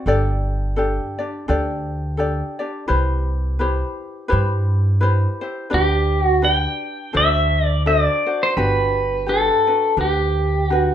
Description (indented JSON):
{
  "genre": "Hawaiian",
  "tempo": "85 BPM",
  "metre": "4/4",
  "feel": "swing 58% on 8ths",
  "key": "G major",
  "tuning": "A4 = 440 Hz",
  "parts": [
    { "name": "ukulele", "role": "accompaniment", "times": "0.0-10.9 s", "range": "D4 to D5", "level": "-24 LUFS", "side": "left 2 dB", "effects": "plate reverb" },
    { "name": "upright bass", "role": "bass", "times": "0.1-10.9 s", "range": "G1 to G2", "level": "-20 LUFS", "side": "equal", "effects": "none" },
    { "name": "pedal steel guitar", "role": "melody", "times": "5.7-10.9 s", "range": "G4 to G5", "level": "-18 LUFS", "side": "equal", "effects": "plate reverb" }
  ],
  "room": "moderate studio reverb, RT60 0.6 s",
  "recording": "rough home demo mix, nothing above 11.0 kHz",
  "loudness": "-17 LUFS",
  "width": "side -10 dB against mid",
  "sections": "0.0-10.9 A section",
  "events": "none",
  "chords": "0.1 Gsus2; 2.9 Cmaj7; 5.7 G/D; 7.1 D7; 8.6 Gmaj7"
}